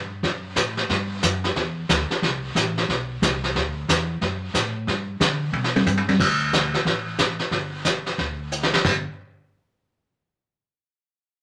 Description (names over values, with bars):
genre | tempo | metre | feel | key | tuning
country, western swing | 181 BPM | 4/4 | swing 63% on 8ths | G major | A4 = 441 Hz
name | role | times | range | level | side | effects
upright bass | bass | 0.0-9.0 s | G1 to D3 | -30 LUFS | equal | none
vintage brush drum kit | drums | 0.2-9.1 s | brushed snare drum, crash cymbal, hi-hat, kick drum, snare drum, toms | -24 LUFS | equal | none
room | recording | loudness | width
moderate studio ambience, RT60 0.5 s | none | -23 LUFS | mono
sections
0.0-6.2 A section; 6.2-8.8 B section; 8.8-10.2 C section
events
drum fill 5.5-6.2, 8.5-8.8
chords
none